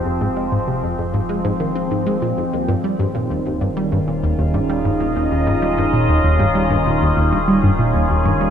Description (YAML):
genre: ambient, sequencer-driven space music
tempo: 97 BPM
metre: 4/4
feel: straight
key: unclear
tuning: A4 = 437 Hz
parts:
  - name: evolving wavetable pad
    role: sustained chords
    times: 0.0-8.5 s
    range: Eb3 to Eb5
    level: -19 LUFS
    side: equal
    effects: phaser, built-in reverb
  - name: round analog bass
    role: bass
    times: 0.0-8.5 s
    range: Eb1 to F1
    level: -30 LUFS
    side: equal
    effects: none
  - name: tight sequenced synth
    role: riff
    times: 0.1-8.5 s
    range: Eb2 to C4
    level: -19 LUFS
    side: equal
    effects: chorus, phaser, ping-pong delay
room: wet lush hall reverb, RT60 2.8 s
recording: dreamy mix soaked in reverb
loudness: -16 LUFS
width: side -8 dB against mid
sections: 0.0-8.5 A section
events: fade-in on analog synth bass 0.0-8.5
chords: 0.0 Fm7; 2.5 Eb7sus4